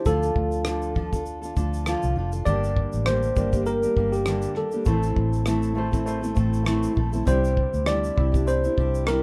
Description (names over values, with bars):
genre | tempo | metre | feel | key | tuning
acoustic pop | 100 BPM | 4/4 | swing 55% on 16ths | D minor | A4 = 439 Hz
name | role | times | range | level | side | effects
tine electric piano | melody | 0.0-9.2 s | G4 to D5 | -29 LUFS | equal | none
fingerpicked steel-string acoustic guitar | accompaniment | 0.0-9.2 s | G2 to A4 | -30 LUFS | equal | none
vintage muted fingered electric bass | bass | 0.1-9.2 s | F1 to D2 | -28 LUFS | equal | none
cloth-damped thuddy drum kit | drums | 0.1-9.2 s | kick drum, rim click, shaker | -30 LUFS | equal | none
felt-muted upright piano | accompaniment | 2.5-9.2 s | A3 to E5 | -36 LUFS | equal | none
room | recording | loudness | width
light reverb | none | -24 LUFS | mono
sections
0.0-9.2 A section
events
none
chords
0.1 Dm; 2.5 Gm; 4.9 Am; 7.3 Cadd9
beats
| 0.06 0.66 1.26 1.86 | 2.46 3.06 3.66 4.26 | 4.86 5.46 6.06 6.67 | 7.27 7.87 8.47 9.07